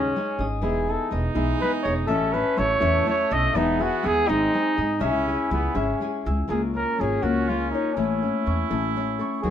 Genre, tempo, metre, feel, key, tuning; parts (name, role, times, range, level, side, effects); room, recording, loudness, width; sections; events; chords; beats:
mexican folk, mariachi; 82 BPM (dotted quarters); 6/8; straight; C# minor; A4 = 439 Hz
mellow trumpet; melody; 0.0-9.5 s; C#4 to D#5; -25 LUFS; right 1 dB
warm trumpet; second line; 0.0-9.5 s; A3 to E4; -31 LUFS; right 6 dB
nylon-string guitar; accompaniment; 0.0-9.5 s; G#2 to Bb4; -29 LUFS; left 2 dB
Celtic harp; arpeggios; 0.0-9.5 s; Gb3 to E6; -28 LUFS; left 6 dB
upright bass; bass; 0.0-9.5 s; E1 to G#2; -28 LUFS; right 1 dB
moderate studio reverb, RT60 0.6 s; minimal, uncompressed stereo recording; -21 LUFS; side -9 dB against mid
0.0-6.5 A section; 6.5-9.5 B section
0.0 G#sus4; 0.6 Emaj7; 2.1 A; 3.6 E; 4.3 G#; 5.0 C#m; 6.5 Db6; 8.0 A
| 0.63 1.36 | 2.09 2.82 | 3.55 4.28 | 5.01 5.75 | 6.50 7.24 | 7.98 8.71 | 9.45